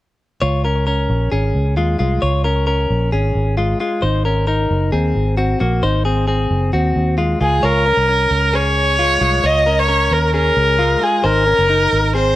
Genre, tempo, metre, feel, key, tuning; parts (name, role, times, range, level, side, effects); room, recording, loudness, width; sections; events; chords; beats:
indie pop; 133 BPM; 4/4; straight; Db major; A4 = 440 Hz
direct-recorded clean electric guitar; arpeggios; 0.4-12.4 s; Ab3 to Db5; -19 LUFS; left 2 dB; plate reverb, analog delay
vintage muted fingered electric bass; bass; 0.4-12.4 s; Gb1 to Eb2; -18 LUFS; equal
warm violin; melody; 7.4-12.4 s; Ab4 to Eb5; -15 LUFS; equal; plate reverb
light reverb; -14 LUFS; side -15 dB against mid
0.4-7.6 A section; 7.6-12.4 B section
0.4 Db6; 4.0 Ab7; 7.4 Db; 7.6 Db6; 11.2 Ab7
| 0.42 0.87 1.32 1.77 | 2.22 2.67 3.12 3.58 | 4.03 4.48 4.93 5.38 | 5.83 6.28 6.73 7.18 | 7.63 8.09 8.54 8.99 | 9.44 9.89 10.34 10.79 | 11.24 11.69 12.14